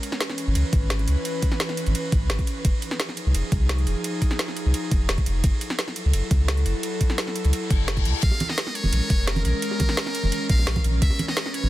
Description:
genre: liquid drum and bass.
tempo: 172 BPM.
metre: 4/4.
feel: straight.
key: unclear.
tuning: A4 = 440 Hz.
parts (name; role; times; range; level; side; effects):
airy breathy pad; sustained chords; 0.0-11.7 s; Fb3 to Cb5; -30 LUFS; equal; chorus, sidechain pumping.
garage drum kit; drums; 0.0-11.6 s; hi-hat, ride cymbal, snare drum; -29 LUFS; right 1 dB; overdrive.
warm sub bass; bass; 0.5-11.7 s; F1 to Db2; -22 LUFS; equal; none.
electronic kick drum; drums; 0.7-11.1 s; none; -22 LUFS; equal; overdrive.
reverse cymbal; sound effects; 7.6-8.2 s; none; -33 LUFS; left 8 dB; none.
trumpet with metal mute; melody; 8.2-11.7 s; Bb4 to F5; -29 LUFS; equal; dub echo.
bongos and congas; percussion; 8.3-11.7 s; none; -31 LUFS; right 3 dB; none.
room: little or no reverb.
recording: dense, heavily limited modern master.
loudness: -21 LUFS.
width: side -15 dB against mid.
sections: 0.0-11.7 A section.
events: reverse cymbal 7.6-8.2.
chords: 0.0 Dbm7; 2.6 Fm7; 5.4 Gbm7; 8.2 Bbm7; 11.0 Dbm7.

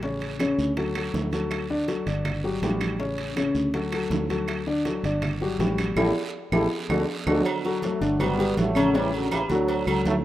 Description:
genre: latin, salsa.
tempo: 162 BPM.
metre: 4/4.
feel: straight.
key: unclear.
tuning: A4 = 443 Hz.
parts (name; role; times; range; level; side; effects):
dark concert grand piano; accompaniment; 0.0-10.2 s; C#3 to D5; -25 LUFS; left 2 dB; none.
fingered electric bass; bass; 0.0-10.2 s; G1 to D2; -30 LUFS; right 1 dB; none.
bongos and cowbell; percussion; 0.0-10.2 s; none; -39 LUFS; left 2 dB; none.
congas; percussion; 0.0-10.2 s; none; -33 LUFS; right 2 dB; none.
guiro; percussion; 0.0-10.2 s; none; -41 LUFS; right 6 dB; none.
timbales and agogo bells; percussion; 0.2-10.2 s; none; -33 LUFS; right 4 dB; none.
claves; percussion; 0.4-10.1 s; none; -37 LUFS; right 7 dB; none.
clear trombone section; melody; 7.3-10.1 s; C#3 to B3; -28 LUFS; right 3 dB; slapback echo.
room: light reverb, studio reverb.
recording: rough home demo mix.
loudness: -23 LUFS.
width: side -14 dB against mid.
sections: 0.0-7.5 A section; 7.5-10.2 B section.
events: band accent 6.0-7.5; drum fill 6.3-7.5.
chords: 0.0 A; 0.8 G5; 3.0 A; 3.7 G5; 6.0 A5; 6.7 D; 8.2 Gmaj7; 8.9 A7; 9.7 Dmaj7.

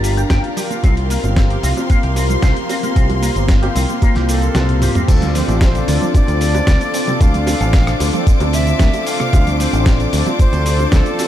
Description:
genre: nu-disco, nu disco.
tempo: 113 BPM.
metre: 4/4.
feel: straight.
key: D minor.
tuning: A4 = 440 Hz.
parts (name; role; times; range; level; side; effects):
warm analog pad; accompaniment; 0.0-11.3 s; Bb3 to F5; -21 LUFS; left 1 dB; chorus, cassette tape, sidechain pumping, ping-pong delay.
clear studio string section; sustained chords; 0.0-11.3 s; Bb3 to D6; -26 LUFS; left 3 dB; sidechain pumping.
electric guitar with an envelope filter; riff; 0.0-5.0 s; Bb3 to G5; -27 LUFS; left 2 dB; analog chorus, ping-pong delay.
picked electric bass; bass; 0.0-11.0 s; G1 to D2; -17 LUFS; equal; none.
dusty soul sampler-style drum kit; drums; 0.0-11.3 s; crash cymbal, hi-hat, rim click, shaker, snare drum, toms; -24 LUFS; equal; studio reverb.
electronic kick drum; drums; 0.3-11.0 s; none; -13 LUFS; equal; studio reverb.
bongos, congas and tambourine; percussion; 0.3-11.3 s; none; -28 LUFS; right 4 dB; none.
breathy bright jazz flute; melody; 4.3-11.3 s; G4 to F5; -24 LUFS; equal; ping-pong delay.
wide unison pluck; arpeggios; 5.1-11.3 s; C3 to C4; -27 LUFS; right 3 dB; none.
room: light reverb, digital ambience.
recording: none.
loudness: -13 LUFS.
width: side -12 dB against mid.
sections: 0.0-5.1 A section; 5.1-11.3 B section.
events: kick drops out 4.6-5.1; drum fill 4.6-5.1; drop 5.1-11.3.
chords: 0.0 Gm7; 0.8 C7sus4; 5.1 Dm7.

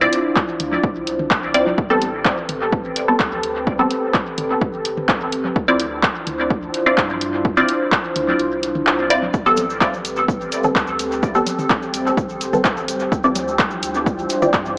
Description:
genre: dub techno.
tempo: 127 BPM.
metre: 4/4.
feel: straight.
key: A minor.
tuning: A4 = 440 Hz.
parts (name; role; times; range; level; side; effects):
dark analog pad; sustained chords; 0.0-14.8 s; C4 to C5; -23 LUFS; equal; chorus, sidechain pumping.
filtered dub chord stab; stabs; 0.0-14.6 s; G3 to D5; -19 LUFS; equal; phaser, sidechain pumping, dub echo.
pure sine sub bass; bass; 0.0-14.8 s; D1 to G2; -38 LUFS; equal; sidechain pumping.
deep house drum kit; drums; 0.1-14.6 s; handclaps, hi-hat; -22 LUFS; equal; overdrive, dub echo.
electronic kick drum; drums; 0.4-14.6 s; none; -21 LUFS; equal; overdrive.
electronic toms and congas; percussion; 0.6-14.5 s; none; -31 LUFS; equal; sidechain pumping on toms, sidechain pumping on perc, dub echo.
cabasa; percussion; 9.3-14.7 s; none; -35 LUFS; equal; none.
wind-like tuned noise texture; texture; 9.8-14.8 s; G3 to G4; -30 LUFS; equal; built-in reverb, sidechain pumping.
room: wet spring reverb, RT60 2.2 s.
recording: echo-heavy mix, small speaker sound.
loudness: -16 LUFS.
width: side -27 dB against mid.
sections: 0.0-9.3 A section; 9.3-14.8 A section.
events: kick drops out 8.4-9.3.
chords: 0.0 Dm9; 1.8 Am9; 5.6 Dm9; 9.3 Am9; 13.1 Dm9.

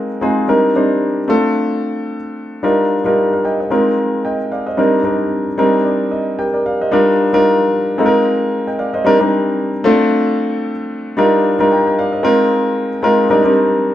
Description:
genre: disco.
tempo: 112 BPM.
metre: 4/4.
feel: swing 56% on 16ths.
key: C minor.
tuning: A4 = 444 Hz.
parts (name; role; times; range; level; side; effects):
warm concert grand piano; solo; 0.0-13.9 s; G3 to Bb5; -13 LUFS; equal; none.
room: wet large studio reverb, RT60 1.1 s.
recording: band playing live in one room.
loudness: -13 LUFS.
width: side -12 dB against mid.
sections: 0.0-6.9 A section; 6.9-13.9 B section.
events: grand piano fill 5.3-6.9.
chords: 0.5 Cm9; 1.3 Dm7; 2.6 Ebmaj9; 3.7 Ab69; 4.8 Cm9; 8.0 Ab69; 9.0 Cm9; 9.8 Dm7; 11.2 Ebmaj9; 12.2 Ab69; 13.3 Cm9.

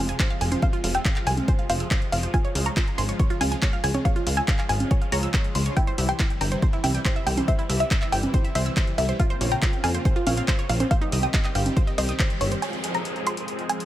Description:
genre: uplifting trance.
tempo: 140 BPM.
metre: 4/4.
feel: straight.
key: F minor.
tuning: A4 = 440 Hz.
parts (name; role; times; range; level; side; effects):
wide unison pluck; melody; 0.0-13.8 s; Db5 to C6; -29 LUFS; equal; cassette tape, sidechain pumping, digital delay.
filtered supersaw swell; sustained chords; 0.0-13.8 s; C3 to Ab4; -32 LUFS; equal; phaser, sidechain pumping.
plucky analog bass; bass; 0.0-12.6 s; F1 to F2; -25 LUFS; equal; sidechain pumping.
wide unison pluck; arpeggios; 0.1-12.6 s; Eb4 to E6; -33 LUFS; right 4 dB; sidechain pumping, tape echo.
punchy analog drum machine; drums; 0.1-13.8 s; congas, handclaps, hi-hat; -29 LUFS; right 1 dB; sidechain pumping on hats, sidechain pumping on perc.
electronic kick drum; drums; 0.2-12.3 s; none; -23 LUFS; equal; none.
downlifter; sound effects; 12.6-13.8 s; none; -33 LUFS; equal; none.
room: little or no reverb.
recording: none.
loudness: -21 LUFS.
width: side -13 dB against mid.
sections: 0.0-12.6 A section; 12.6-13.8 B section.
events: band accent 12.2.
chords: 0.0 Fm; 2.3 Db; 5.8 C; 9.2 Bbmadd9; 10.9 Cm; 12.6 Fm.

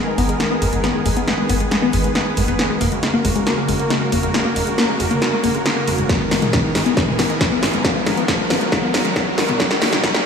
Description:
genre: uplifting trance.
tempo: 137 BPM.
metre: 4/4.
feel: straight.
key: G# minor.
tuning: A4 = 440 Hz.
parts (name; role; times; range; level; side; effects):
riser; sound effects; 1.4-10.3 s; none; -26 LUFS; equal; none.
wide unison pluck; arpeggios; 0.1-10.2 s; G#3 to B3; -22 LUFS; left 4 dB; sidechain pumping, digital delay.
tight sequencer bass; bass; 0.2-10.0 s; F#1 to A#1; -24 LUFS; equal; sidechain pumping.
big-room dance drum kit; drums; 0.2-10.2 s; hi-hat, snare drum, toms; -21 LUFS; equal; none.
electronic kick drum; drums; 6.1-10.1 s; none; -23 LUFS; equal; none.
room: moderate lush hall reverb, RT60 1.8 s.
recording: played on a big sound system in a bare room, large studio reverb, high-pass filter.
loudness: -16 LUFS.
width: side -6 dB against mid.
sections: 0.0-10.3 A section.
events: build-up 0.0-10.3; drum fill 0.0-10.3; filter sweep 0.0-10.3; riser 1.4-10.3.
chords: 0.0 G#madd9; 2.6 F#; 6.1 G#madd9; 9.6 D#sus4.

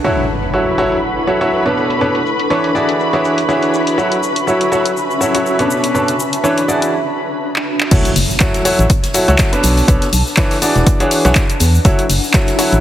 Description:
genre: piano house.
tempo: 122 BPM.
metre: 4/4.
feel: swing 56% on 16ths.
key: unclear.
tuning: A4 = 440 Hz.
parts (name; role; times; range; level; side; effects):
muted studio string section; sustained chords; 0.0-7.9 s; B4 to B5; -23 LUFS; left 1 dB; sidechain pumping, low-pass filter.
bright baby grand piano; riff; 0.0-12.8 s; B2 to D5; -16 LUFS; equal; sidechain pumping, dub echo.
house drum kit; drums; 0.0-12.8 s; crash cymbal, handclaps, hi-hat, shaker; -19 LUFS; left 2 dB; low-pass filter on hats, low-pass filter on perc, low-pass filter on snare, low-pass filter on cymbals.
impact; sound effects; 0.0-2.0, 7.9-9.9 s; none; -25 LUFS; equal; none.
granular cloud pad; texture; 0.0-12.8 s; C#4 to C#6; -21 LUFS; equal; built-in reverb, sidechain pumping.
organ-like FM bass; bass; 7.9-12.8 s; E1 to E2; -14 LUFS; equal; sidechain pumping.
electronic kick drum; drums; 7.9-12.4 s; none; -14 LUFS; equal; none.
street-band drum kit; drums; 7.9-12.7 s; hi-hat, snare drum; -30 LUFS; right 3 dB; none.
room: light reverb, small room ambience.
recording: heavily compressed radio sound.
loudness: -12 LUFS.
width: side -12 dB against mid.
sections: 0.0-7.9 A section; 7.9-12.8 B section.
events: impact 0.0-2.0, 7.9-9.9; break 6.9-7.9; drum fill 7.5-7.9; drop 7.9-12.8.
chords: 0.0 Bm9; 2.8 E13; 4.0 Bm9; 6.7 E13; 7.9 F#m7; 9.6 Bm9; 10.6 E13; 11.8 F#m7.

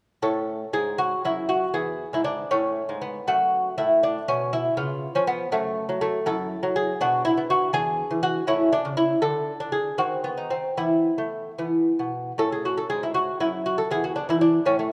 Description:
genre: classical, baroque-style dance for lute.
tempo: 80 BPM (dotted quarters).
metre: 6/8.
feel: rubato.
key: A major.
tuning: A4 = 440 Hz.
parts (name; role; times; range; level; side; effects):
lute; solo; 0.2-14.9 s; E2 to A4; -24 LUFS; equal; none.
room: moderate concert hall reverb, RT60 2.0 s.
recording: none.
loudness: -24 LUFS.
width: mono.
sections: 0.2-12.4 A section; 12.4-14.9 A section.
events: none.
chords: 0.2 A; 1.8 E; 2.5 A; 3.3 F#m; 4.8 C#7; 5.5 N.C.; 6.2 F#m7; 7.0 Bm; 7.7 E7; 8.5 A; 9.2 N.C.; 10.0 D#m6; 10.8 Esus4; 11.6 E5; 12.4 A; 13.9 E5.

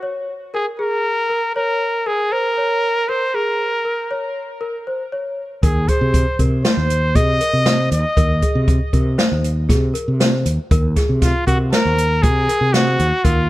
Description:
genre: progressive instrumental, band music in an uneven meter.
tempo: 118 BPM.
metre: 5/4.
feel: straight.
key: unclear.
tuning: A4 = 439 Hz.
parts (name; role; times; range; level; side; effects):
clear trumpet; melody; 0.0-13.5 s; F4 to Eb5; -19 LUFS; equal; digital delay.
celesta; arpeggios; 0.0-13.4 s; Ab4 to Db5; -26 LUFS; left 1 dB; none.
fretless electric bass; bass; 5.6-13.5 s; Eb2 to C3; -18 LUFS; equal; none.
open jazz drum kit; drums; 5.6-13.4 s; hi-hat, kick drum, snare drum; -18 LUFS; equal; none.
room: light reverb.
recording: none.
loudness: -15 LUFS.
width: side -16 dB against mid.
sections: 0.0-13.5 A section.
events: none.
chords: 0.0 Bbm7; 5.6 Ab/Eb.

